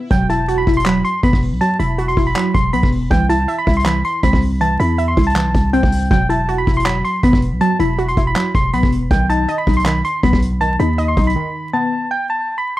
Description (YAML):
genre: hip hop, trap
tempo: 160 BPM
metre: 4/4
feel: half-time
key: E harmonic minor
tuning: A4 = 442 Hz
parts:
  - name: warbly dusty pluck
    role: accompaniment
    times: 0.0-12.1 s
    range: D#3 to E5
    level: -20 LUFS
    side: equal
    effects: chorus
  - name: soft electric-piano-like synth keys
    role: melody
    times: 0.1-12.8 s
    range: G5 to C6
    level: -20 LUFS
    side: right 1 dB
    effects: chorus
  - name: growling 808-style bass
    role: bass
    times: 0.1-11.4 s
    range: E1 to E2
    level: -18 LUFS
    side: equal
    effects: none
  - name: vintage brush drum kit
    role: drums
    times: 0.1-11.4 s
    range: handclaps, hi-hat, kick drum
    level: -19 LUFS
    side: equal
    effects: none
room: small room ambience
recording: dry, gritty hardware recording, vinyl crackle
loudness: -14 LUFS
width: side -15 dB against mid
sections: 0.1-12.1 A section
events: break 11.4-12.1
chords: 0.1 Esus2; 3.1 C; 6.1 Esus2; 9.1 B; 12.1 N.C.